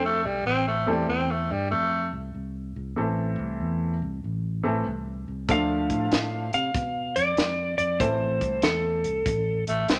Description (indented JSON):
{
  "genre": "electric blues shuffle",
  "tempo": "95 BPM",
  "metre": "4/4",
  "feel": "swing 66% on 8ths",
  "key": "A minor",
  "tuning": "A4 = 444 Hz",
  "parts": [
    { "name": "electric slide guitar", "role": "melody", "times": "0.0-0.2, 5.5-9.6 s", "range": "A4 to F5", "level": "-29 LUFS", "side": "equal", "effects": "none" },
    { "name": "growling tenor saxophone", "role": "second line", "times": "0.0-2.1, 9.7-10.0 s", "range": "G3 to C4", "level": "-28 LUFS", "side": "equal", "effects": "none" },
    { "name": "fingered electric bass", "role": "bass", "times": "0.0-10.0 s", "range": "A1 to C3", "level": "-33 LUFS", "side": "equal", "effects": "none" },
    { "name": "clear upright piano", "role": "accompaniment", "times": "0.9-9.0 s", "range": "E3 to A4", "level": "-31 LUFS", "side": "equal", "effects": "none" },
    { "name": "compact cocktail drum kit", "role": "drums", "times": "5.5-10.0 s", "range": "hi-hat, kick drum, snare drum", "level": "-29 LUFS", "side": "equal", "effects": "none" }
  ],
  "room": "moderate large studio reverb, RT60 1.3 s",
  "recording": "none",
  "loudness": "-26 LUFS",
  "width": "mono",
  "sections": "0.0-10.0 A section",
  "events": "none",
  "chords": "0.5 Am; 5.5 Dm; 8.0 Am"
}